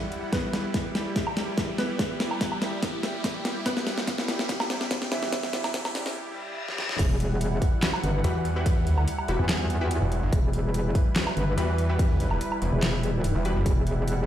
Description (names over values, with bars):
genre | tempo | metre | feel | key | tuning
heavy wobble dubstep | 144 BPM | 4/4 | half-time | E minor | A4 = 441 Hz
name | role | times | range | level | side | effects
warm concert grand piano | melody | 0.0-6.2 s | E3 to B4 | -35 LUFS | right 2 dB | dub echo
supersaw pad | sustained chords | 0.0-14.3 s | G3 to F#5 | -33 LUFS | right 1 dB | sidechain pumping, low-pass filter
riser and reverse cymbal | sound effects | 0.0-7.0 s | none | -37 LUFS | left 2 dB | none
dubstep drum kit | drums | 0.1-14.2 s | crash cymbal, handclaps, hi-hat, snare drum, woodblock | -29 LUFS | equal | overdrive
electronic kick drum | drums | 0.3-13.7 s | none | -27 LUFS | equal | overdrive
metallic wobble bass | bass | 7.0-14.3 s | E1 to E2 | -25 LUFS | equal | chorus, overdrive
orchestra-hit-like synth stab | stabs | 8.2-13.6 s | E4 to B4 | -34 LUFS | left 2 dB | built-in reverb, dub echo
snarling distorted saw bass | bass | 8.2-13.6 s | E1 to E2 | -25 LUFS | equal | distortion, overdrive
room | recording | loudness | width
light reverb | played on a big sound system in a bare room, stone room reverb, high-pass filter | -24 LUFS | side -11 dB against mid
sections
0.0-7.0 A section; 7.0-14.3 B section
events
build-up 0.0-7.0; drum fill 0.0-6.2, 6.7-7.0; riser 0.0-6.2; filter sweep 0.0-7.0; break 6.2-7.0; reverse cymbal 6.2-7.0; drop 7.0-14.3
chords
0.0 Em; 7.0 Emadd9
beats
| 0.33 0.74 1.16 1.57 | 1.99 2.41 2.83 3.24 | 3.66 4.08 4.49 4.91 | 5.33 5.74 6.16 6.58 | 6.99 7.41 7.83 8.24 | 8.66 9.07 9.49 9.91 | 10.32 10.74 11.16 11.57 | 11.99 12.41 12.82 13.24 | 13.66 14.07